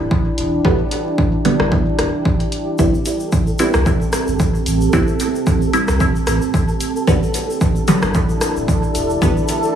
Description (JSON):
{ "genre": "dub techno", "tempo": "112 BPM", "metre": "4/4", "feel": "swing 55% on 16ths", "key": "A minor", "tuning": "A4 = 440 Hz", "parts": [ { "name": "deep dark ambient pad", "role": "sustained chords", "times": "0.0-9.8 s", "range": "C4 to A4", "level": "-22 LUFS", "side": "right 2 dB", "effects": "chorus, built-in reverb, sidechain pumping" }, { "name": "pure sine sub bass", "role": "bass", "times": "0.0-9.3 s", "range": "D1 to C2", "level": "-21 LUFS", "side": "equal", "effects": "sidechain pumping" }, { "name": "electronic kick drum", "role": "drums", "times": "0.1-9.3 s", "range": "none", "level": "-18 LUFS", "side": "equal", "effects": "none" }, { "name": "deep house drum kit", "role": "drums", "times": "0.4-9.6 s", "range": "hi-hat, rim click", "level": "-24 LUFS", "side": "left 1 dB", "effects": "overdrive, dub echo" }, { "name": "filtered dub chord stab", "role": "stabs", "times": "0.6-9.4 s", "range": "D3 to E4", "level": "-20 LUFS", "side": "equal", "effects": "phaser, sidechain pumping, dub echo" }, { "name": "egg shaker", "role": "percussion", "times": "2.8-9.7 s", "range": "none", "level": "-31 LUFS", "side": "left 2 dB", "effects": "none" }, { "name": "flickering grainy texture", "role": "texture", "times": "3.1-9.8 s", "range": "A4", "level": "-26 LUFS", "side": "right 1 dB", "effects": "built-in reverb, sidechain pumping" } ], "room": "moderate echo chamber reverb, RT60 1.4 s, digital ambience", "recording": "vinyl crackle, studio reverb", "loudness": "-14 LUFS", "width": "side -9 dB against mid", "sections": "0.0-9.8 A section", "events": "none", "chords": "0.0 Em7; 2.8 Am7; 7.1 Em7", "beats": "0.11 | 0.65 1.18 1.72 2.25 | 2.79 3.32 3.86 4.40 | 4.93 5.47 6.00 6.54 | 7.07 7.61 8.15 8.68 | 9.22" }